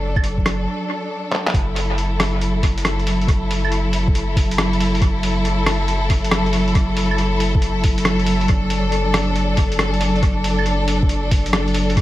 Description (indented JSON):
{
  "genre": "future garage",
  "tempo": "138 BPM",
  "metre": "4/4",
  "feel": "swing 67% on 16ths",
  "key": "F# minor",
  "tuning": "A4 = 441 Hz",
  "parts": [
    { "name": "warm studio string section", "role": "sustained chords", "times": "0.0-12.0 s", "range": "F#3 to A4", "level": "-21 LUFS", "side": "equal", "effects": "sidechain pumping" },
    { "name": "soft dub sub bass", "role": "bass", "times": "0.0-12.0 s", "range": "F#1", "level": "-22 LUFS", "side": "equal", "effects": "sidechain pumping" },
    { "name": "electronic kick drum", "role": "drums", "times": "0.2-12.0 s", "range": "none", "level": "-18 LUFS", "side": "equal", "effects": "none" },
    { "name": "lo-fi sampler-style drum kit", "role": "drums", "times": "0.2-12.0 s", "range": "claves, handclaps, hi-hat, rim click", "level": "-23 LUFS", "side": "equal", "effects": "overdrive, dub echo" }
  ],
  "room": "light reverb, digital ambience",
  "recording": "echo-heavy mix, vinyl crackle",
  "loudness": "-16 LUFS",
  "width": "side -15 dB against mid",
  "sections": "0.0-1.5 A section; 1.5-12.0 B section",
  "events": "break 0.7-1.5; drum fill 1.3",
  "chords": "0.0 D/F#; 1.5 F#m7; 8.5 D/F#",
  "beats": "0.23 0.67 1.10 | 1.54 1.97 2.41 2.84 | 3.28 3.71 4.15 4.58 | 5.01 5.45 5.88 6.32 | 6.75 7.19 7.62 8.06 | 8.49 8.93 9.36 9.80 | 10.23 10.67 11.10 11.54 | 11.97"
}